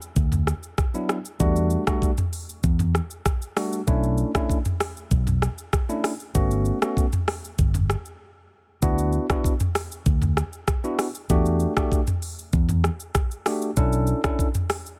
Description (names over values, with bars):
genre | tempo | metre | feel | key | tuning
afrobeats | 97 BPM | 4/4 | straight | D major | A4 = 445 Hz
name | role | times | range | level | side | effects
afro-pop drum kit | drums | 0.0-15.0 s | hi-hat, kick drum, rim click, shaker, toms | -26 LUFS | equal | none
fingered electric bass | bass | 0.2-14.1 s | G1 to E2 | -25 LUFS | equal | none
tine electric piano | accompaniment | 0.9-14.5 s | F#3 to A4 | -28 LUFS | equal | none
room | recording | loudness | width
little or no reverb | none | -24 LUFS | mono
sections
0.0-8.8 A section; 8.8-15.0 B section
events
break 8.2-8.8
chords
0.0 D69; 1.4 Em11; 3.9 Bm11; 6.3 Gmaj9#11; 8.8 D69; 11.3 Em11; 13.8 Bm11